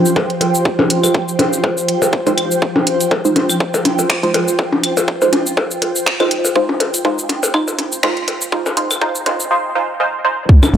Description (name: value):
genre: minimal techno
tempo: 122 BPM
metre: 4/4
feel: swing 56% on 16ths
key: F minor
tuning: A4 = 439 Hz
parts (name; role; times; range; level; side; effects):
- airy breathy pad; texture; 0.0-9.5 s; F4 to G5; -21 LUFS; right 1 dB; chorus, phaser, sidechain pumping
- swarming drone; texture; 0.0-10.8 s; F3 to G4; -23 LUFS; right 1 dB; built-in reverb, sidechain pumping
- garage drum kit; drums; 0.1-10.8 s; cabasa, finger snaps, hi-hat; -20 LUFS; right 1 dB; overdrive, studio reverb
- electronic kick drum; drums; 0.2-10.6 s; none; -13 LUFS; equal; overdrive, high-pass filter on kick, studio reverb
- percussion blips and claves; percussion; 0.2-10.7 s; none; -18 LUFS; left 2 dB; studio reverb, analog delay
- filtered dub chord stab; stabs; 2.3-10.4 s; Ab3 to C5; -18 LUFS; right 2 dB; phaser, analog chorus, analog delay
- woody FM bass; bass; 10.7-10.8 s; F1; -9 LUFS; equal; sidechain pumping
room: light reverb, digital ambience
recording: dry, gritty hardware recording, transformer saturation, high-pass filter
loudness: -13 LUFS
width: side -9 dB against mid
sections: 0.0-10.5 A section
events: build-up 0.0-10.5; filter sweep on synth stab 0.0-10.5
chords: 0.0 Fm7